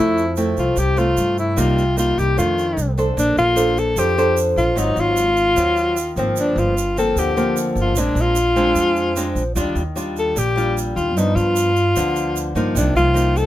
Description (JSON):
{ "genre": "bossa nova", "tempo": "150 BPM", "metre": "4/4", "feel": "straight", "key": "F major, Bb major from 3.2 s", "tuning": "A4 = 439 Hz", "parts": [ { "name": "breathy alto saxophone", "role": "melody", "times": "0.0-13.5 s", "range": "D4 to A4", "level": "-18 LUFS", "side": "left 2 dB", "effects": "none" }, { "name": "nylon-string guitar", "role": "accompaniment", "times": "0.0-13.5 s", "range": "F2 to C5", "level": "-22 LUFS", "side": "equal", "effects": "none" }, { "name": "upright bass", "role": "bass", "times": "0.0-13.5 s", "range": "G1 to G2", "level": "-22 LUFS", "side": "right 1 dB", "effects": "none" }, { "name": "egg shaker", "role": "percussion", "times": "0.2-13.5 s", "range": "none", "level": "-31 LUFS", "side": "right 10 dB", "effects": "none" } ], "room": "little or no reverb", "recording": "none", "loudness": "-16 LUFS", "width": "side -13 dB against mid", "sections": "0.0-3.2 A section; 3.2-13.5 B section", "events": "none", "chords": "0.0 Fmaj7; 1.6 Cm7; 2.4 F6; 3.2 Bbmaj9; 4.8 Ab13; 6.4 Gm7; 8.0 Bb9; 9.6 Ebmaj9; 11.2 G7; 12.8 Cm7", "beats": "0.37 0.77 1.17 | 1.57 1.97 2.37 2.77 | 3.17 3.57 3.97 4.37 | 4.76 5.16 5.56 5.96 | 6.36 6.76 7.16 7.56 | 7.96 8.36 8.76 9.16 | 9.56 9.96 10.36 10.76 | 11.15 11.55 11.95 12.35 | 12.75 13.15" }